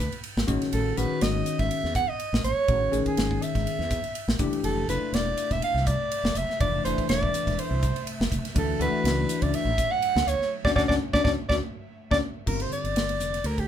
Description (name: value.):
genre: electric jazz fusion.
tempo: 123 BPM.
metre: 4/4.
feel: swing 54% on 16ths.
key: unclear.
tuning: A4 = 440 Hz.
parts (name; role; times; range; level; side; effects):
warm soprano saxophone; melody; 0.0-13.7 s; G4 to F#5; -27 LUFS; right 2 dB; none.
mellow fretless electric bass; bass; 0.0-13.6 s; E1 to E2; -29 LUFS; equal; none.
modern studio drum kit; drums; 0.0-13.7 s; crash cymbal, hi-hat, kick drum, ride cymbal, snare drum; -29 LUFS; equal; none.
bell-like tine electric piano; accompaniment; 0.5-13.4 s; D3 to G#4; -29 LUFS; left 5 dB; phaser.
airy breathy pad; sustained chords; 5.1-12.4 s; C3 to E5; -40 LUFS; right 1 dB; chorus.
room: moderate small room reverb, RT60 0.5 s.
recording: band playing live in one room.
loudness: -23 LUFS.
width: side -10 dB against mid.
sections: 0.0-12.5 A section; 12.5-13.7 B section.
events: band accent 10.5-12.5; drum fill 11.5-12.5; tine electric piano fill 11.5-12.5; soprano saxophone solo 12.5-13.7.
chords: 0.5 Amaj7; 4.4 Fmaj9; 8.6 Dmaj9; 12.5 G7sus4.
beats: 0.24 | 0.73 1.22 1.71 2.20 | 2.69 3.18 3.67 4.16 | 4.64 5.13 5.62 6.11 | 6.60 7.09 7.58 8.07 | 8.56 9.05 9.54 10.03 | 10.52 11.01 11.49 11.98 | 12.47 12.96 13.45.